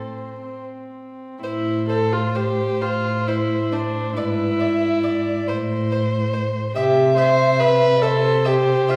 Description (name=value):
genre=classical, slow romantic movement for string quartet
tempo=38-48 BPM (dotted quarters)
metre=6/8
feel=rubato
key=A minor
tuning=A4 = 440 Hz
part: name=dark violin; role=second line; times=0.0-9.0 s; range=B4 to E5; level=-27 LUFS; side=equal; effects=none
part: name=warm viola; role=accompaniment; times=0.0-9.0 s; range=C4 to C5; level=-23 LUFS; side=equal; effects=none
part: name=dark cello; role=bass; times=0.0-9.0 s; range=G#2 to C3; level=-27 LUFS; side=equal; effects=none
part: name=warm violin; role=melody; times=1.4-9.0 s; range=C5 to E5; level=-35 LUFS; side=equal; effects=none
room=wet recital hall reverb, RT60 1.4 s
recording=heard from further back in the room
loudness=-20 LUFS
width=mono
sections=0.0-1.4 A section; 1.4-9.0 A section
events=none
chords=0.0 Am; 4.2 E7/G#; 5.5 Am; 6.8 C